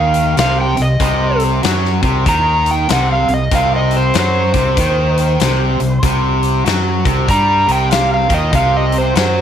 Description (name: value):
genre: blues rock power trio and southern rock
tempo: 96 BPM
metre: 4/4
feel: swing 63% on 8ths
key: unclear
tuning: A4 = 438 Hz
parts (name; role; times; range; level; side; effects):
- overdriven slide guitar; melody; 0.0-9.4 s; C5 to Bb5; -16 LUFS; right 1 dB; slapback echo
- distorted electric guitar; riff; 0.0-9.4 s; C3 to G3; -17 LUFS; equal; overdrive
- growling fingered electric bass; bass; 0.0-9.4 s; C2 to G2; -17 LUFS; equal; overdrive
- big rock drum kit; drums; 0.1-9.3 s; hi-hat, kick drum, snare drum; -20 LUFS; left 3 dB; none
room: light reverb, studio ambience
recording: 1960s-style stereo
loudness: -12 LUFS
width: side -9 dB against mid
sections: 0.0-9.4 A section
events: none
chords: 0.0 Cm